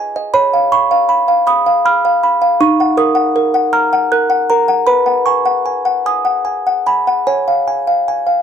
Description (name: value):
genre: classical, lullaby for music box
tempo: 52 BPM (dotted quarters)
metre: 6/8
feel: uneven beats, rubato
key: unclear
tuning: A4 = 440 Hz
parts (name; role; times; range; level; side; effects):
- music box; solo; 0.0-8.4 s; D#4 to F#6; -11 LUFS; equal; none
room: little or no reverb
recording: dry, close 1970s-style studio recording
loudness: -11 LUFS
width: side -8 dB against mid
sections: 0.0-8.4 A section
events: none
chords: 0.4 C#7; 2.6 D#m; 4.9 G#m7/B; 7.2 C#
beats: | 0.35 1.47 | 2.60 3.73 | 4.87 6.04 | 7.24